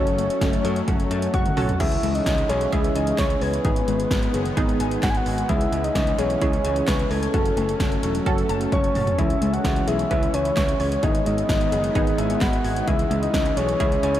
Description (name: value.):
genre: synth-pop.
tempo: 130 BPM.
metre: 4/4.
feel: straight.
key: C# minor.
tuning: A4 = 441 Hz.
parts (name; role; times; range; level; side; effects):
soft octave-layered synth lead; melody; 0.0-14.2 s; A4 to G#5; -25 LUFS; left 1 dB; chorus, tape echo.
funky polysynth comp; accompaniment; 0.0-14.2 s; B3 to B4; -30 LUFS; right 2 dB; chorus.
warm analog pad; sustained chords; 0.0-14.2 s; D#3 to C#4; -28 LUFS; equal; chorus.
warbly dusty pluck; arpeggios; 0.0-14.2 s; D#3 to A6; -31 LUFS; left 1 dB; chorus, phaser, tape echo.
modern bright picked electric bass; bass; 0.0-14.2 s; E1 to F#2; -27 LUFS; equal; none.
punchy analog drum machine; drums; 0.1-14.2 s; crash cymbal, handclaps, hi-hat, kick drum, snare drum, toms; -25 LUFS; equal; overdrive.
room: moderate huge ambient reverb, RT60 7.8 s.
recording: dreamy mix soaked in reverb.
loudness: -19 LUFS.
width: side -12 dB against mid.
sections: 0.0-1.8 A section; 1.8-14.2 B section.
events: drum fill 1.3-1.8, 8.7-9.2.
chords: 0.0 F#m; 1.8 C#m; 3.6 G#m; 5.5 C#m; 7.3 F#m; 9.2 C#m; 11.0 G#m; 12.9 C#m.